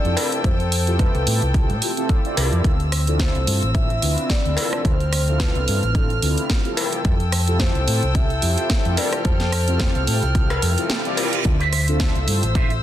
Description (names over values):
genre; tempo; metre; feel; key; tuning
nu-disco, nu disco; 109 BPM; 4/4; swing 55% on 16ths; unclear; A4 = 441 Hz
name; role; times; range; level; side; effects
soft octave-layered synth lead; melody; 0.0-10.9 s; A4 to E5; -29 LUFS; left 1 dB; chorus, tremolo, vintage 12-bit sampler grit, tape echo
mellow synth brass; accompaniment; 0.0-12.7 s; C4 to E5; -27 LUFS; right 1 dB; chorus, vintage 12-bit sampler grit, sidechain pumping, tape echo
warm chamber violin section; sustained chords; 0.0-12.8 s; C4 to F6; -28 LUFS; left 2 dB; sidechain pumping
hollow-body short-scale fingered electric bass; bass; 0.0-12.8 s; A1 to A2; -21 LUFS; equal; none
house drum kit; drums; 0.0-12.8 s; hi-hat, rim click, snare drum; -26 LUFS; right 2 dB; none
cowbell; percussion; 0.2-11.3 s; none; -28 LUFS; left 5 dB; none
electronic kick drum; drums; 0.4-12.7 s; none; -20 LUFS; equal; none
reverse cymbal; sound effects; 10.8-11.5 s; none; -30 LUFS; right 6 dB; none
electric guitar with an envelope filter; riff; 11.4-12.7 s; F4 to E5; -27 LUFS; right 5 dB; ensemble chorus, tape echo
room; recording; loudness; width
digital ambience; dense, heavily limited modern master; -17 LUFS; side -12 dB against mid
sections
0.0-12.8 A section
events
reverse cymbal 10.8-11.5; kick drops out 10.9-11.5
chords
0.0 Fmaj9; 2.6 Dm9; 6.8 Fmaj9; 11.5 Dm9